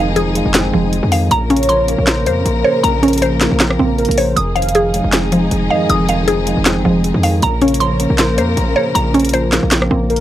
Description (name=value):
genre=hip hop, trap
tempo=157 BPM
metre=4/4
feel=half-time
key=unclear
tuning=A4 = 438 Hz
part: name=tine electric piano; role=accompaniment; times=0.0-10.2 s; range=F2 to C5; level=-19 LUFS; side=equal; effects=none
part: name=warm symphonic string section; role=sustained chords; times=0.0-10.2 s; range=Db3 to Bb4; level=-22 LUFS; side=left 2 dB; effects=none
part: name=mallet-like synth pluck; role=arpeggios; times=0.0-10.2 s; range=F3 to Eb6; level=-17 LUFS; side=equal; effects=chorus, tape echo
part: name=hard-hitting 808-style bass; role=bass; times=0.0-10.2 s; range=F1 to F2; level=-18 LUFS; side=equal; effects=none
part: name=trap drum kit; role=drums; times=0.2-10.2 s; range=handclaps, hi-hat, rim click, snare drum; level=-17 LUFS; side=equal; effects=overdrive
part: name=warm velvety synth lead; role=second line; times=1.5-10.2 s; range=Bb4 to F5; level=-21 LUFS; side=right 2 dB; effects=chorus, tape echo
room=little or no reverb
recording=dry, gritty hardware recording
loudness=-12 LUFS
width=side -12 dB against mid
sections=0.0-10.2 A section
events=none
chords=0.0 Fm7; 1.3 Bbmadd9; 4.4 Fm7; 7.4 Bbmadd9